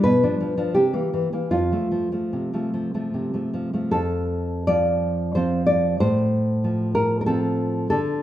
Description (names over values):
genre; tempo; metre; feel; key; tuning
romantic piece for solo classical guitar; 73-96 BPM; 3/4; rubato; F major; A4 = 440 Hz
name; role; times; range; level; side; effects
nylon-string guitar; solo; 0.0-8.2 s; F2 to D5; -20 LUFS; equal; none
room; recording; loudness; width
moderate recital hall reverb, RT60 1.5 s; minimal, uncompressed stereo recording; -20 LUFS; side -12 dB against mid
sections
0.0-3.9 A section; 3.9-8.2 B section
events
none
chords
0.0 Bdim; 0.8 C7; 1.5 F; 6.0 F/A